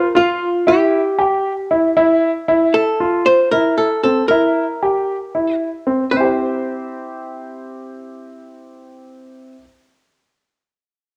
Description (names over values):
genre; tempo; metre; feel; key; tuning
progressive instrumental, progressive; 231 BPM (eighths); 7/8; straight; C mixolydian; A4 = 439 Hz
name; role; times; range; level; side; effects
archtop guitar, miked and amplified; melody; 0.0-9.5 s; F4 to C5; -19 LUFS; equal; cassette tape
clear concert grand piano; arpeggios; 0.0-9.7 s; C4 to C5; -19 LUFS; equal; cassette tape
room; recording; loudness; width
moderate spring reverb, RT60 1.4 s, small room ambience; home recording on cassette; -16 LUFS; mono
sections
0.0-2.5 A section; 2.5-6.1 B section; 6.1-9.8 C section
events
none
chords
0.0 F5; 0.7 Em; 2.5 Fmaj7; 4.3 C